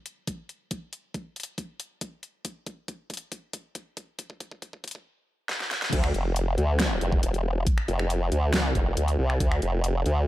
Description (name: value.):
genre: heavy wobble dubstep.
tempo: 138 BPM.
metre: 4/4.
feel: half-time.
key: D minor.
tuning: A4 = 440 Hz.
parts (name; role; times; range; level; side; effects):
dubstep drum kit; drums; 0.1-10.1 s; crash cymbal, finger snaps, hi-hat, snare drum; -31 LUFS; equal; overdrive.
electronic kick drum; drums; 0.3-9.5 s; none; -28 LUFS; equal; overdrive.
formant-sweep wobble bass; bass; 5.9-10.3 s; E1 to D2; -24 LUFS; equal; chorus, overdrive.
room: light reverb, digital ambience.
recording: dark, warm production, high-pass filter.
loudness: -24 LUFS.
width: side -15 dB against mid.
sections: 0.0-5.9 A section; 5.9-10.3 B section.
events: build-up 0.0-5.9; drum fill 0.0-5.1, 5.5-5.9; drop 5.9-10.3.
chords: none.